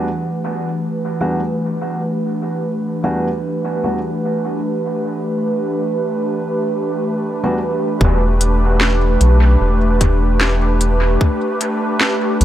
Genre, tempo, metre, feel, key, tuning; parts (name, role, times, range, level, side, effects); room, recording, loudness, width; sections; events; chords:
ambient dub; 75 BPM; 4/4; swing 57% on 16ths; E minor; A4 = 440 Hz
airy breathy pad; sustained chords; 0.0-12.4 s; E3 to B4; -19 LUFS; right 1 dB; chorus
dark upright piano; stabs; 0.0-7.6 s; E2 to F#4; -24 LUFS; equal; low-pass filter, dub echo
round analog bass; bass; 8.0-12.4 s; E1 to B1; -14 LUFS; equal
electronic kick drum; drums; 8.0-11.4 s; -15 LUFS; equal
organic electronic drum kit; drums; 8.4-12.4 s; hi-hat, snare drum; -20 LUFS; left 1 dB; low-pass filter on hats, low-pass filter on snare, low-pass filter on room, dub echo
light reverb; -15 LUFS; side -12 dB against mid
0.0-8.0 A section; 8.0-12.4 B section
filter sweep on analog synth pad 0.0-8.0
0.0 Em7